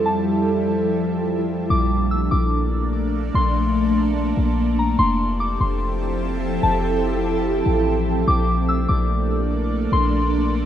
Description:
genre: hip hop, atmospheric cloud-rap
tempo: 146 BPM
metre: 4/4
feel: half-time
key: unclear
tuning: A4 = 440 Hz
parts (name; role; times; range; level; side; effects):
- ethereal airy pad; sustained chords; 0.0-10.7 s; F2 to A4; -21 LUFS; right 1 dB; ensemble chorus, built-in reverb, phaser
- soft synth bell; melody; 0.1-10.7 s; A5 to E6; -25 LUFS; left 2 dB; chorus, low-pass filter, digital delay
- warm 808-style bass; bass; 1.7-10.7 s; F1 to Bb1; -22 LUFS; left 1 dB; none
room: moderate small room reverb, RT60 0.5 s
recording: rough home demo mix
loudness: -18 LUFS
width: side -10 dB against mid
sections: 0.0-1.7 A section; 1.7-10.7 B section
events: none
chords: 0.0 Fmaj9; 1.7 Bbmaj7; 5.0 Fmaj9; 8.3 Bbmaj7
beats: | 0.06 0.47 0.88 1.29 | 1.70 2.11 2.52 2.93 | 3.35 3.76 4.17 4.58 | 4.99 5.40 5.81 6.22 | 6.63 7.04 7.46 7.87 | 8.28 8.69 9.10 9.51 | 9.92 10.33

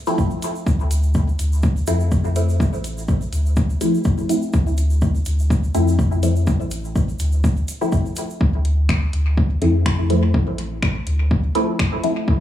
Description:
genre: dub techno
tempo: 124 BPM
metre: 4/4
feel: swing 54% on 16ths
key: D minor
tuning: A4 = 439 Hz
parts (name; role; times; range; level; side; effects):
- filtered dub chord stab; stabs; 0.1-12.2 s; F3 to E4; -23 LUFS; equal; phaser, sidechain pumping, dub echo
- egg shaker; percussion; 0.1-8.4 s; none; -36 LUFS; right 3 dB; none
- warm sub bass; bass; 0.2-12.4 s; A1 to F2; -19 LUFS; equal; sidechain pumping
- electronic kick drum; drums; 0.2-12.4 s; none; -19 LUFS; equal; overdrive
- deep house drum kit; drums; 0.4-12.1 s; finger snaps, hi-hat; -30 LUFS; left 1 dB; overdrive, dub echo
room: light reverb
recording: echo-heavy mix, small room ambience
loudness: -17 LUFS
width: side -12 dB against mid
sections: 0.0-8.4 A section; 8.4-12.4 A section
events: none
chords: 0.0 Dm9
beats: 0.18 | 0.67 1.15 1.63 2.12 | 2.60 3.08 3.57 4.05 | 4.54 5.02 5.50 5.99 | 6.47 6.96 7.44 7.92 | 8.41 8.89 9.38 9.86 | 10.34 10.83 11.31 11.79 | 12.28

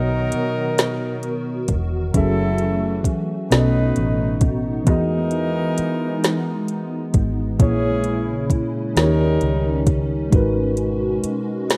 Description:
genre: slow six-eight R&B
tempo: 44 BPM (dotted quarters)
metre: 6/8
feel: straight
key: unclear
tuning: A4 = 444 Hz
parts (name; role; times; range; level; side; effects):
- mellow tine electric piano; accompaniment; 0.0-11.8 s; A#2 to E5; -24 LUFS; equal; none
- hollow soft pad; sustained chords; 0.0-11.8 s; B2 to A#4; -30 LUFS; equal; ensemble chorus
- clear horn section; stabs; 0.0-11.8 s; D#3 to B4; -30 LUFS; equal; none
- vintage muted fingered electric bass; bass; 0.0-11.3 s; E1 to E2; -26 LUFS; equal; none
- smooth R&B drum kit; drums; 0.3-11.8 s; hi-hat, kick drum, snare drum; -20 LUFS; equal; none
room: little or no reverb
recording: rough home demo mix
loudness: -20 LUFS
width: mono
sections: 0.0-11.8 A section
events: none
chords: 0.0 Bmaj7; 2.1 F#m7; 3.5 B7; 4.9 Emaj7; 7.6 A#m7b5; 9.0 D#7; 10.3 G#m9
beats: 0.77 | 2.14 3.50 | 4.86 6.23 | 7.59 8.95 | 10.32 11.68

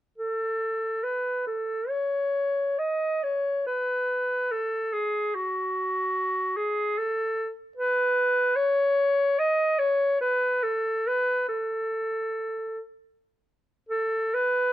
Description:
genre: classical, free, expressive piece for unaccompanied clarinet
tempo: 48-78 BPM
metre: 4/4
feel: rubato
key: unclear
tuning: A4 = 443 Hz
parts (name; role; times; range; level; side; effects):
- bright clarinet; solo; 0.2-14.7 s; F#4 to D#5; -24 LUFS; equal; none
room: light reverb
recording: dark, warm production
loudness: -24 LUFS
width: side -13 dB against mid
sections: 0.2-13.9 A section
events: none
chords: none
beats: | 0.19 1.03 1.88 2.78 | 3.67 4.52 5.37 6.18 | 7.00 7.79 8.57 9.38 | 10.21 11.05 11.91 12.83 | 13.90

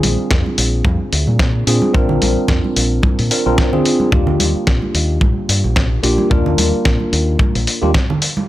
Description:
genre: nu-disco, nu disco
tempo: 110 BPM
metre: 4/4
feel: swing 56% on 16ths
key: Eb major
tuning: A4 = 438 Hz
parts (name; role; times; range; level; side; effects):
- tine electric piano; accompaniment; 0.0-7.9 s; Bb3 to Bb4; -18 LUFS; equal; phaser, low-pass filter, analog delay
- fingered electric bass with an envelope filter; bass; 0.0-7.9 s; Bb1 to Bb2; -18 LUFS; equal; tube saturation
- dusty soul sampler-style drum kit; drums; 0.0-8.3 s; hi-hat, snare drum; -20 LUFS; left 1 dB; none
- congas; percussion; 0.0-8.5 s; none; -23 LUFS; right 3 dB; none
- kick drum; drums; 0.3-8.1 s; none; -16 LUFS; equal; none
room: small room reverb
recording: dry, gritty hardware recording, transformer saturation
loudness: -13 LUFS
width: side -15 dB against mid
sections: 0.0-8.5 A section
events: none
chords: 0.0 Bb7; 4.1 Ebmaj7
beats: 0.31 0.85 1.40 | 1.95 2.49 3.04 3.58 | 4.13 4.67 5.22 5.76 | 6.31 6.85 7.40 7.95

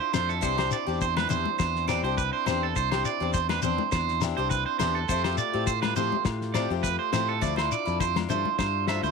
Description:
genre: highlife guitar band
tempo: 103 BPM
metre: 4/4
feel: swing 53% on 16ths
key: C major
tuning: A4 = 440 Hz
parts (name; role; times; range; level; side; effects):
- percussive tonewheel organ; sustained chords; 0.0-9.1 s; A3 to G4; -36 LUFS; left 16 dB; overdrive, wide subtle chorus
- electric guitar at the edge of break-up; arpeggios; 0.0-9.1 s; A4 to E5; -28 LUFS; right 15 dB; tape echo
- picked swing-style acoustic guitar; accompaniment; 0.1-9.1 s; E3 to G4; -32 LUFS; left 14 dB; none
- fingered electric bass; bass; 0.1-9.1 s; C2 to A2; -31 LUFS; left 1 dB; none
- damped 70s drum kit; drums; 0.1-9.0 s; kick drum, snare drum; -31 LUFS; left 5 dB; none
- agogo bells; percussion; 0.1-9.0 s; none; -39 LUFS; left 12 dB; none
- congas; percussion; 0.1-9.1 s; none; -34 LUFS; left 12 dB; none
- shekere; percussion; 0.1-9.1 s; none; -34 LUFS; left 7 dB; none
room: light reverb, studio ambience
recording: 1960s-style stereo with parts hard left and right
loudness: -24 LUFS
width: side -5 dB against mid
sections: 0.0-9.1 A section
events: none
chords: 0.4 Cadd9; 5.1 Fadd9; 7.4 Dmadd9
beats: | 0.43 1.01 1.59 2.18 | 2.76 3.34 3.92 4.50 | 5.09 5.67 6.25 6.83 | 7.42 8.00 8.58

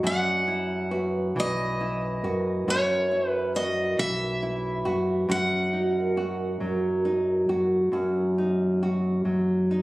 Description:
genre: acoustic folk-pop ballad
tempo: 46 BPM (dotted quarters)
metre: 6/8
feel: straight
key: F# major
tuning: A4 = 440 Hz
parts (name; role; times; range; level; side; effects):
- nylon-string guitar; accompaniment; 0.0-9.8 s; F#2 to F#4; -26 LUFS; equal; none
- vibraphone with soft mallets; arpeggios; 0.0-8.1 s; F#4 to D#5; -30 LUFS; right 2 dB; none
- fingered electric bass; bass; 0.0-9.8 s; B1 to F#2; -31 LUFS; equal; none
- picked steel-string acoustic guitar; melody; 0.1-9.7 s; C#5 to F#5; -28 LUFS; equal; none
room: moderate large studio reverb, RT60 1.3 s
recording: recorded on a phone in the room, club reverb, compression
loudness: -23 LUFS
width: side -19 dB against mid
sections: 0.0-9.8 A section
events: none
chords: 0.0 Esus2; 5.3 F#6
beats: | 0.03 1.35 | 2.67 3.98 | 5.29 6.61 | 7.93 9.25

